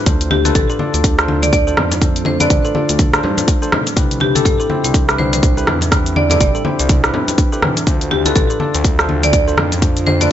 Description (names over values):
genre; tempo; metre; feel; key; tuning
afro house; 123 BPM; 4/4; swing 59% on 16ths; D dorian; A4 = 441 Hz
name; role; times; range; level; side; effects
ethereal airy pad; sustained chords; 0.0-10.3 s; C3 to F4; -29 LUFS; right 2 dB; none
bright tine electric piano; stabs; 0.0-10.3 s; C4 to D5; -24 LUFS; left 4 dB; auto-pan, sidechain pumping, tape echo
kalimba; arpeggios; 0.1-10.2 s; C4 to A4; -23 LUFS; right 2 dB; sidechain pumping, tape echo
smooth synth bass; bass; 0.1-10.3 s; G1 to G2; -20 LUFS; equal; sidechain pumping
deep house drum kit; drums; 0.1-10.3 s; hi-hat, rim click, shaker, toms; -19 LUFS; equal; none
electronic kick drum; drums; 0.1-9.9 s; none; -15 LUFS; equal; none
congas; percussion; 0.1-10.3 s; none; -22 LUFS; left 3 dB; none
marimba with hard mallets; melody; 0.3-10.3 s; G4 to D5; -20 LUFS; equal; tape echo
room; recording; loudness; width
light reverb; nothing above 7.9 kHz; -12 LUFS; side -11 dB against mid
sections
0.0-10.3 A section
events
none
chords
0.1 Dm7; 4.0 Cmaj7; 7.9 Dm7